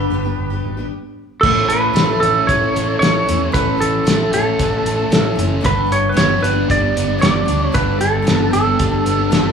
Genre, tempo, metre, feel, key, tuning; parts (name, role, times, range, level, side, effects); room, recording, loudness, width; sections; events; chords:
folk rock and heartland rock; 114 BPM; 4/4; straight; A mixolydian; A4 = 442 Hz
clean lap steel guitar; melody; 0.0-9.5 s; A4 to D5; -18 LUFS; right 2 dB
picked steel-string acoustic guitar; accompaniment; 0.0-9.5 s; G2 to A4; -23 LUFS; left 5 dB
picked electric bass; bass; 0.0-9.5 s; F#1 to E2; -22 LUFS; equal
biting overdriven guitar; riff; 1.4-9.5 s; G2 to D4; -22 LUFS; right 2 dB; spring reverb
cloth-damped thuddy drum kit; drums; 1.4-9.5 s; crash cymbal, hi-hat, kick drum, snare drum; -19 LUFS; equal
moderate large studio reverb, RT60 1.3 s; band playing live in one room; -14 LUFS; side -6 dB against mid
0.0-1.4 A section; 1.4-9.5 A section
0.0 G; 1.4 A; 5.6 G